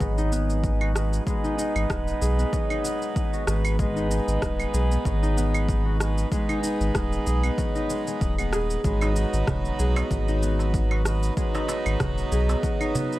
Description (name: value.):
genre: organic downtempo.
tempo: 95 BPM.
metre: 4/4.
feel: swing 55% on 16ths.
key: G# minor.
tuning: A4 = 440 Hz.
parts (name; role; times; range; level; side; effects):
pedal harmonium; accompaniment; 0.0-13.2 s; F#3 to B4; -29 LUFS; right 2 dB; sidechain pumping, low-pass filter, tape echo.
concert harp; arpeggios; 0.0-13.2 s; F#3 to G#4; -30 LUFS; left 2 dB; tape echo.
warm sub bass; bass; 0.0-12.6 s; D#1 to B1; -24 LUFS; equal; tube saturation, sidechain pumping.
electronic cabasa, claves and rim click; drums; 0.0-13.2 s; none; -33 LUFS; right 1 dB; overdrive.
electronic kick drum; drums; 0.0-12.8 s; none; -28 LUFS; equal; overdrive.
darbuka; percussion; 9.0-13.1 s; none; -32 LUFS; right 2 dB; none.
room: little or no reverb.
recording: none.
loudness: -22 LUFS.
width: side -16 dB against mid.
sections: 0.0-13.2 A section.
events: filter sweep on harmonium 0.0-13.2.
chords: 0.0 G#m.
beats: 0.00 0.64 | 1.27 1.90 2.53 3.16 | 3.79 4.42 5.06 5.69 | 6.32 6.95 7.58 8.21 | 8.85 9.48 10.11 10.74 | 11.37 12.00 12.63.